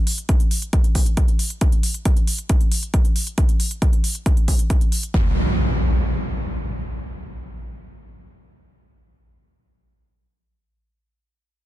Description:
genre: uplifting trance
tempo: 136 BPM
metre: 4/4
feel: straight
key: none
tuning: none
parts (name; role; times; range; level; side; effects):
- electronic hi-hat; drums; 0.1-5.1 s; none; -27 LUFS; right 1 dB; overdrive
- electronic kick drum; drums; 0.3-5.2 s; none; -17 LUFS; equal; none
- impact; sound effects; 5.1-10.1 s; none; -22 LUFS; equal; none
room: little or no reverb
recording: dense, heavily limited modern master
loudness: -18 LUFS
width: side -15 dB against mid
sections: 0.0-5.1 A section; 5.1-8.7 B section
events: none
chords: none

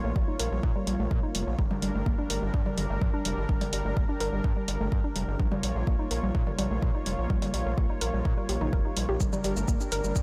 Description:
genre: melodic techno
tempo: 126 BPM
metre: 4/4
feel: straight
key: G minor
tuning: A4 = 438 Hz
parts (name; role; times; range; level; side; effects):
- warm analog pad; sustained chords; 0.0-10.2 s; G3 to Db5; -38 LUFS; equal; chorus, tremolo, vintage 12-bit sampler grit, sidechain pumping
- woody wave-folded pluck; arpeggios; 0.0-10.1 s; F3 to Bb4; -35 LUFS; equal; chorus, sidechain pumping, delay
- gritty driven synth bass; bass; 0.0-10.2 s; F1 to Bb2; -34 LUFS; equal; sidechain pumping
- electronic kick drum; drums; 0.2-10.2 s; none; -30 LUFS; equal; none
- deep house drum kit; drums; 0.4-10.2 s; hi-hat, shaker, toms; -37 LUFS; equal; none
room: light reverb, digital ambience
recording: none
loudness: -28 LUFS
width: mono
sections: 0.0-10.2 A section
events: filter sweep on synth pluck 0.0-10.2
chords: 0.0 Bbm; 1.6 Gm; 5.4 Bbm; 9.2 Gm

